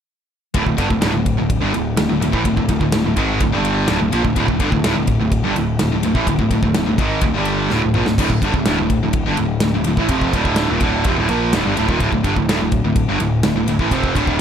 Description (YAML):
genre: heavy metal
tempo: 126 BPM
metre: 4/4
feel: straight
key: D phrygian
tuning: A4 = 442 Hz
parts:
  - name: high-gain distorted guitar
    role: riff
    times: 0.5-14.4 s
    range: D2 to Bb3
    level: -20 LUFS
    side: left 9 dB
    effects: distortion
  - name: fuzz picked electric bass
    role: bass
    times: 0.5-14.4 s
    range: D1 to Bb1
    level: -22 LUFS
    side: equal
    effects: overdrive
  - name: modern studio drum kit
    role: drums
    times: 0.5-14.4 s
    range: crash cymbal, kick drum, ride cymbal, snare drum, toms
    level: -21 LUFS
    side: equal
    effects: none
  - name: distorted electric guitar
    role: riff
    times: 0.6-14.4 s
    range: D2 to Bb3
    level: -20 LUFS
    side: right 10 dB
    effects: distortion
room: studio ambience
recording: dark, warm production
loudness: -15 LUFS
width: side -8 dB against mid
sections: 0.6-14.4 A section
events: drum fill 7.7-8.2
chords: 0.6 Dm